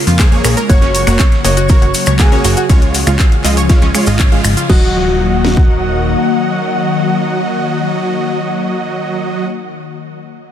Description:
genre	progressive house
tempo	120 BPM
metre	4/4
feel	straight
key	Eb minor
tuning	A4 = 439 Hz
part	airy breathy pad	sustained chords	0.0-9.5 s	Db3 to Gb4	-19 LUFS	left 4 dB	chorus, phaser, sidechain pumping
part	analog pluck	arpeggios	0.1-4.9 s	Db4 to Gb5	-23 LUFS	equal	analog chorus, sidechain pumping, digital delay
part	plucky analog bass	bass	0.1-6.2 s	Eb1 to F2	-16 LUFS	equal	sidechain pumping
part	house drum kit	drums	0.1-4.8 s	crash cymbal, finger snaps, handclaps, hi-hat	-21 LUFS	left 2 dB	none
part	cabasa	percussion	0.1-4.7 s	none	-23 LUFS	right 1 dB	none
part	supersaw stab	stabs	0.2-9.5 s	Gb3 to F5	-19 LUFS	right 2 dB	cassette tape, sidechain pumping, digital delay
part	dusty soul sampler-style drum kit	drums	0.2-4.6 s	hi-hat, snare drum	-30 LUFS	left 1 dB	none
part	house drum kit	drums	0.2-5.7 s	kick drum, snare drum	-10 LUFS	equal	none
part	dark baby grand piano	melody	0.7-9.5 s	Gb4 to Db5	-22 LUFS	left 1 dB	sidechain pumping, digital delay
part	airy dreamy lead	second line	0.7-9.5 s	Gb5 to Db6	-24 LUFS	equal	chorus, sidechain pumping, digital delay
room	light reverb, digital ambience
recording	dense, heavily limited modern master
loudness	-10 LUFS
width	side -10 dB against mid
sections	0.0-4.7 A section; 4.7-8.7 B section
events	drop 0.0-4.7; band accent 4.2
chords	0.0 Bbm7; 0.7 Gb; 2.7 Db; 4.7 Ebm

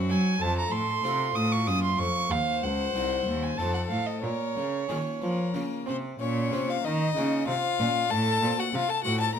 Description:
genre	classical, baroque-style sonata movement with continuo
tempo	94 BPM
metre	3/4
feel	straight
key	Bb minor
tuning	A4 = 442 Hz
part	rich violin	melody	0.0-9.4 s	F4 to Bb5	-30 LUFS	left 9 dB	none
part	harpsichord	accompaniment	0.0-9.4 s	C2 to Bb4	-33 LUFS	left 2 dB	none
part	rich cello	bass	0.0-9.4 s	C2 to Gb3	-29 LUFS	right 1 dB	none
part	warm violin	second line	0.1-9.4 s	C4 to Eb6	-30 LUFS	right 6 dB	none
room	light reverb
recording	close, detailed microphones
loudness	-25 LUFS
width	side -8 dB against mid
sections	0.0-6.2 A section; 6.2-9.4 B section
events	none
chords	0.4 F7; 1.7 Gb; 2.3 Cdim; 3.6 F7; 4.2 Bbm; 8.1 F/A

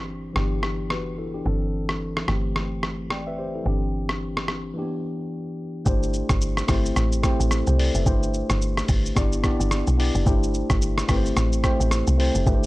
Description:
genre	afrobeats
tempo	109 BPM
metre	4/4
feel	swing 58% on 16ths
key	G major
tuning	A4 = 441 Hz
part	tine electric piano	accompaniment	0.0-12.7 s	E3 to G5	-27 LUFS	left 1 dB	lush chorus
part	woody log drum bass	bass	0.0-12.7 s	F#1 to C2	-24 LUFS	equal	none
part	lo-fi sampler-style drum kit	drums	0.4-12.7 s	hi-hat, kick drum, rim click, shaker	-25 LUFS	equal	none
room	digital ambience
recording	dry, gritty hardware recording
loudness	-21 LUFS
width	side -19 dB against mid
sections	0.0-5.9 A section; 5.9-12.7 B section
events	break 4.8-5.9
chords	0.4 G6; 1.5 C69/G; 2.3 Am7/G; 3.7 D9sus4/G; 4.8 G6; 5.9 C69/G; 6.7 Am7/G; 8.1 D9sus4/G; 9.2 G6; 10.3 C69/G; 11.1 Am7/G

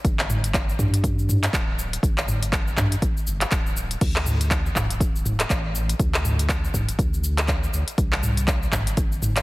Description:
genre	afro house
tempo	121 BPM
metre	4/4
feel	swing 59% on 16ths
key	unclear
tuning	A4 = 439 Hz
part	warm sub bass	bass	0.0-9.4 s	D1 to G2	-25 LUFS	equal	sidechain pumping
part	afro-pop drum kit	drums	0.0-9.4 s	crash cymbal, handclaps, hi-hat, shaker, toms	-24 LUFS	equal	none
part	electronic kick drum	drums	0.0-9.1 s	none	-24 LUFS	equal	none
room	light reverb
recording	heavily compressed radio sound, multiband compression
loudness	-20 LUFS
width	side -20 dB against mid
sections	0.0-9.4 A section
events	none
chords	none

